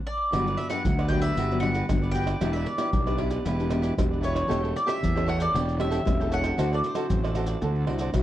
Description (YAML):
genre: samba and choro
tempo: 115 BPM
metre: 4/4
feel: straight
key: G major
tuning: A4 = 440 Hz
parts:
  - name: mandolin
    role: melody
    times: 0.1-7.3 s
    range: C5 to G5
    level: -29 LUFS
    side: equal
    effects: slapback echo
  - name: cavaquinho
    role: accompaniment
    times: 0.3-8.1 s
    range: E4 to G5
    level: -34 LUFS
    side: right 3 dB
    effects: none
  - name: nylon-string guitar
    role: accompaniment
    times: 0.3-8.2 s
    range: G2 to G4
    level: -32 LUFS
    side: left 2 dB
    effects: none
  - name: fuzz fingered electric bass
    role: bass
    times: 0.3-8.2 s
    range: E1 to E2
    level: -27 LUFS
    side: equal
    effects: overdrive
  - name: maracas, surdo, pandeiro and tamborim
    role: percussion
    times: 0.3-8.2 s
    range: none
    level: -29 LUFS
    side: equal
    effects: none
room: light reverb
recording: worn, warbling old tape, cassette tape, warbly pitch drift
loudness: -23 LUFS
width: side -13 dB against mid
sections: 0.3-8.2 A section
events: band accent 0.0-0.3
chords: 0.3 Gmaj7; 2.4 Em7; 4.5 A7/E; 6.6 D9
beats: | 0.33 0.85 1.37 1.90 | 2.42 2.94 3.46 3.98 | 4.50 5.02 5.54 6.06 | 6.58 7.10 7.62 8.15